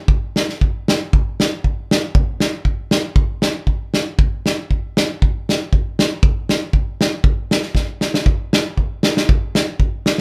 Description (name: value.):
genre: alpine folk.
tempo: 118 BPM.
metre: 2/4.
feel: rubato.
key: none.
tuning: none.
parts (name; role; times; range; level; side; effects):
natural country drum kit; drums; 0.1-10.2 s; kick drum, snare drum; -18 LUFS; equal; none.
room: light reverb.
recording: band playing live in one room.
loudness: -18 LUFS.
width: mono.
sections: 0.0-8.2 A section; 8.2-10.2 B section.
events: drum fill 7.7-8.2.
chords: none.